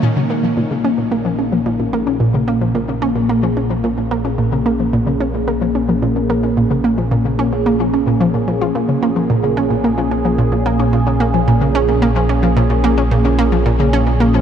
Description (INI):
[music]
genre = ambient, sequencer-driven space music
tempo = 110 BPM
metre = 4/4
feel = straight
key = Bb minor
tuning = A4 = 439 Hz
[part]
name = phased analog pad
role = sustained chords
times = 0.0-14.4 s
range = Bb2 to Ab4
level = -18 LUFS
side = equal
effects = phaser, chorus
[part]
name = analog pluck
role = riff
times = 0.0-14.4 s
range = Bb2 to F4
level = -16 LUFS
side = equal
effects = chorus, ping-pong delay
[part]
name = round analog bass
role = bass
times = 0.0-14.4 s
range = Bb1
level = -22 LUFS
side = equal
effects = none
[sound]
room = wet huge ambient reverb, RT60 7.8 s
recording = dark, warm production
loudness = -14 LUFS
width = side -8 dB against mid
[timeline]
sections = 0.0-14.4 A section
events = fade-in on analog synth bass 0.0-14.4; filter sweep on synth arpeggio sound 0.0-14.4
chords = 0.0 Bbm7